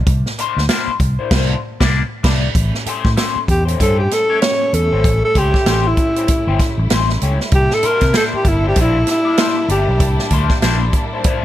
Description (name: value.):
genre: funk.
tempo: 97 BPM.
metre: 4/4.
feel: swing 60% on 16ths.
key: A mixolydian.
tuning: A4 = 440 Hz.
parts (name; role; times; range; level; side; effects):
fingered electric bass; bass; 0.0-11.3 s; G1 to C3; -17 LUFS; equal; none.
swinging big-band drum kit; drums; 0.1-11.4 s; crash cymbal, hi-hat, kick drum, snare drum; -18 LUFS; equal; none.
electric guitar at the edge of break-up; accompaniment; 0.4-11.4 s; A3 to D5; -23 LUFS; left 8 dB; wah, lush chorus.
clear studio string section; sustained chords; 2.5-11.4 s; G3 to E4; -27 LUFS; equal; none.
breathy alto saxophone; melody; 3.5-10.3 s; E4 to C#5; -17 LUFS; equal; tape echo.
room: little or no reverb.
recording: none.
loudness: -13 LUFS.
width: side -13 dB against mid.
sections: 0.0-2.6 A section; 2.6-11.4 B section.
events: band accent 1.3-2.6; alto saxophone solo 2.6-11.4.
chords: 0.0 C9; 2.6 A7#9; 7.5 C9.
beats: | 0.07 0.69 1.31 1.94 | 2.56 3.18 3.80 4.42 | 5.04 5.66 6.28 6.90 | 7.52 8.14 8.77 9.39 | 10.01 10.63 11.25.